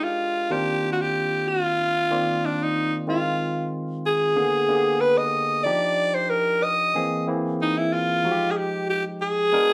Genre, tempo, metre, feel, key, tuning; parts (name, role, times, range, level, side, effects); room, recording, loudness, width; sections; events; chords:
pop; 93 BPM; 4/4; swing 54% on 16ths; A4 = 440 Hz
raspy alto saxophone; melody; 0.0-9.7 s; D4 to Eb5; -24 LUFS; equal
barky tine electric piano; accompaniment; 0.0-9.7 s; D3 to D5; -30 LUFS; equal
wet studio reverb, RT60 0.6 s; band playing live in one room; -23 LUFS; mono
0.5-9.7 A section
0.0 Bb7; 0.5 Cm11; 3.1 Fm7; 4.4 Bb7b9; 5.7 Ebmaj9; 7.0 Caug7; 8.2 Fm9